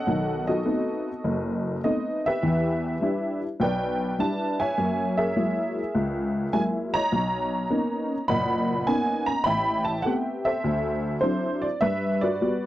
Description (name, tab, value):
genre	solo jazz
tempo	102 BPM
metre	4/4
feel	swing 69% on 8ths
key	unclear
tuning	A4 = 440 Hz
part	honky-tonk upright piano	solo	0.0-12.7 s	F#1 to B5	-23 LUFS	equal	none
room	moderate booth ambience, RT60 0.3 s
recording	dry, close 1970s-style studio recording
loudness	-23 LUFS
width	side -14 dB against mid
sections	0.0-12.7 A section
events	none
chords	0.1 B7b9; 2.4 Em7; 4.8 F#9; 7.1 Bmaj9; 9.5 Am9; 10.6 D9; 11.8 Gmaj7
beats	| 0.06 0.65 1.24 1.83 | 2.42 3.00 3.59 4.18 | 4.76 5.35 5.94 6.52 | 7.11 7.70 8.28 8.87 | 9.46 10.05 10.63 11.22 | 11.81 12.40